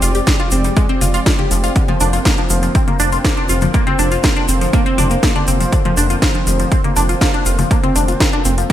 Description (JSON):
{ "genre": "melodic techno", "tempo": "121 BPM", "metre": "4/4", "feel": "straight", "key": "unclear", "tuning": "A4 = 443 Hz", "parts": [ { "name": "warm analog pad", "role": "sustained chords", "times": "0.0-8.7 s", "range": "D3 to D5", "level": "-22 LUFS", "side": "equal", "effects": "chorus, sidechain pumping" }, { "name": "tight sequenced synth", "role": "arpeggios", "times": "0.0-8.7 s", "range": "D3 to G4", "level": "-19 LUFS", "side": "equal", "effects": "chorus, phaser, sidechain pumping, ping-pong delay" }, { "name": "dark detuned saw bass", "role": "bass", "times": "0.0-8.6 s", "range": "F1", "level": "-18 LUFS", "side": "equal", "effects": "sidechain pumping" }, { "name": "house drum kit", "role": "drums", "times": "0.0-8.7 s", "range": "congas, hi-hat, snare drum", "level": "-20 LUFS", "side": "left 1 dB", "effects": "overdrive, gated reverb" }, { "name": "tube shaker", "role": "percussion", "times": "0.0-8.7 s", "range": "none", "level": "-27 LUFS", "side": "left 4 dB", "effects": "none" }, { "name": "electronic kick drum", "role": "drums", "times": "0.3-8.7 s", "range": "none", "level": "-16 LUFS", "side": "equal", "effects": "overdrive" } ], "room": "light reverb", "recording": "bright 1980s-style digital production", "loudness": "-12 LUFS", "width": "side -12 dB against mid", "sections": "0.0-8.7 A section", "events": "none", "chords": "0.0 Fmadd9; 1.8 Bbadd9/F" }